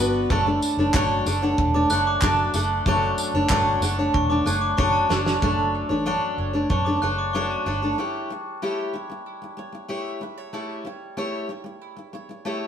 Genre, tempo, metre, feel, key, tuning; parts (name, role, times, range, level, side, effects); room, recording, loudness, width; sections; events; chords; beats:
acoustic pop; 94 BPM; 4/4; straight; D major; A4 = 439 Hz
picked steel-string acoustic guitar; accompaniment; 0.0-12.7 s; F#2 to C#5; -23 LUFS; equal
mandolin; arpeggios; 0.0-12.7 s; G3 to F#5; -32 LUFS; right 2 dB
vintage muted fingered electric bass; bass; 0.0-7.9 s; E1 to F#2; -27 LUFS; equal
loose indie drum kit; drums; 0.3-6.8 s; handclaps, kick drum, snare drum, tambourine; -26 LUFS; right 1 dB
glockenspiel with hard plastic mallets; second line; 1.7-8.0 s; A5 to F#6; -30 LUFS; left 2 dB
wet stone room reverb, RT60 1.0 s; band playing live in one room; -20 LUFS; side -8 dB against mid
0.0-5.4 A section; 5.4-8.0 B section; 8.0-12.7 C section
drum fill 4.8-5.4
0.3 Dmaj7; 5.4 Dmaj7/F#; 8.0 A7
| 0.31 0.95 1.59 2.23 | 2.87 3.50 4.14 4.78 | 5.42 6.06 6.70 7.34 | 7.98 8.62 9.26 9.90 | 10.54 11.18 11.81 12.45